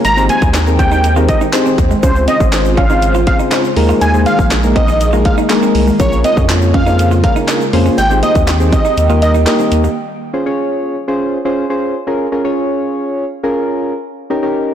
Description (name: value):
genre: dance-pop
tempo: 121 BPM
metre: 4/4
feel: straight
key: unclear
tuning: A4 = 440 Hz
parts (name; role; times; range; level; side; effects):
- fat analog lead; melody; 0.0-9.3 s; C5 to Bb5; -17 LUFS; right 1 dB; sidechain pumping, ping-pong delay
- soft electric-piano-like synth keys; accompaniment; 0.0-14.7 s; Ab3 to Eb5; -16 LUFS; left 1 dB; chorus, sidechain pumping
- airy breathy pad; sustained chords; 0.0-10.0 s; Db3 to G5; -21 LUFS; left 1 dB; chorus, sidechain pumping
- semi-hollow electric guitar; riff; 0.0-9.9 s; Ab3 to F4; -21 LUFS; right 6 dB; lush chorus
- saturated sub bass; bass; 0.0-9.9 s; Ab1 to F2; -14 LUFS; equal; sidechain pumping
- house drum kit; drums; 0.0-9.8 s; handclaps, hi-hat, kick drum, snare drum; -16 LUFS; equal; none
- egg shaker; percussion; 0.0-10.0 s; none; -36 LUFS; left 11 dB; none
room: light reverb, digital ambience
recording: blown-out, overdriven recording, overdrive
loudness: -11 LUFS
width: side -10 dB against mid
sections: 0.0-10.0 A section; 10.0-14.7 B section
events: drop 0.0-10.0; kick muted 9.0-10.0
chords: 0.0 Abmaj7; 2.0 Dbmaj7; 3.8 Ebsus4; 6.0 Bbm7; 8.0 Abmaj7; 9.0 Eb; 10.0 Dbmaj7; 11.9 Bbm7; 13.9 Eb7